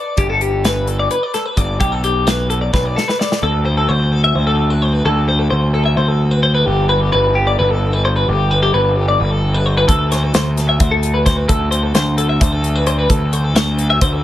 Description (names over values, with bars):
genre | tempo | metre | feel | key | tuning
math rock and midwest emo | 260 BPM (eighths) | 7/8 | straight | unclear | A4 = 440 Hz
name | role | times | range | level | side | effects
twelve-string electric guitar | arpeggios | 0.0-14.2 s | G4 to E5 | -17 LUFS | left 2 dB | spring reverb, plate reverb
fuzz picked electric bass | bass | 0.2-14.2 s | G1 to D2 | -16 LUFS | equal | overdrive
modern studio drum kit | drums | 0.2-3.4, 9.9-14.1 s | hi-hat, kick drum, snare drum | -18 LUFS | equal | none
room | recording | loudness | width
little or no reverb | lossy compression artefacts | -13 LUFS | side -13 dB against mid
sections
0.0-3.4 A section; 3.4-14.2 B section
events
drum fill 2.7-3.4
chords
0.2 Gadd9; 3.4 D5; 6.7 Gadd9; 9.9 D5